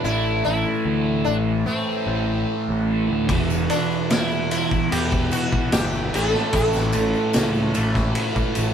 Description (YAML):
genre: psychedelic rock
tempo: 74 BPM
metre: 4/4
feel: straight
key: unclear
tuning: A4 = 440 Hz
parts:
  - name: sitar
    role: melody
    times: 0.0-7.3 s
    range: C4 to A4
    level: -26 LUFS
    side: equal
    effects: none
  - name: pedal harmonium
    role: sustained chords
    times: 0.0-8.7 s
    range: E4 to C6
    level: -33 LUFS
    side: right 8 dB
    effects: none
  - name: fuzz guitar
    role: riff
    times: 0.0-8.7 s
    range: E2 to A3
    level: -23 LUFS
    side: equal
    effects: distortion, phaser
  - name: fuzz picked electric bass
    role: bass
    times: 0.0-8.7 s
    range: E1 to E2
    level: -26 LUFS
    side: equal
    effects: overdrive
  - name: vintage drum kit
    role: drums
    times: 3.3-8.7 s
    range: kick drum, ride cymbal, snare drum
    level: -24 LUFS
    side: equal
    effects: none
  - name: tambourine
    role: percussion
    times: 3.3-8.7 s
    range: none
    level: -40 LUFS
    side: left 5 dB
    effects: none
room: moderate stone room reverb, RT60 1.1 s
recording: band playing live in one room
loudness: -19 LUFS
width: side -8 dB against mid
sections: 0.0-8.7 A section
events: none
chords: 0.0 Am; 3.3 Em; 6.1 A